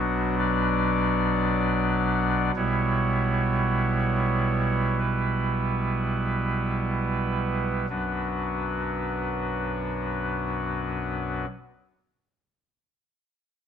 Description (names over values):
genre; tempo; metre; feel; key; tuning
classical, chorale-style piece for pipe organ; 38-57 BPM; 4/4; rubato; B minor; A4 = 441 Hz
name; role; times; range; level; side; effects
pipe organ, soft reed; solo; 0.0-11.5 s; B1 to D5; -23 LUFS; equal; none
room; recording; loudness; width
wet stone room reverb, RT60 1.0 s; close, detailed microphones; -23 LUFS; side -8 dB against mid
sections
0.0-7.9 A section; 7.9-13.7 B section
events
slowing down 0.0-7.9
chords
0.0 Bm; 2.6 Em/B; 7.9 Bm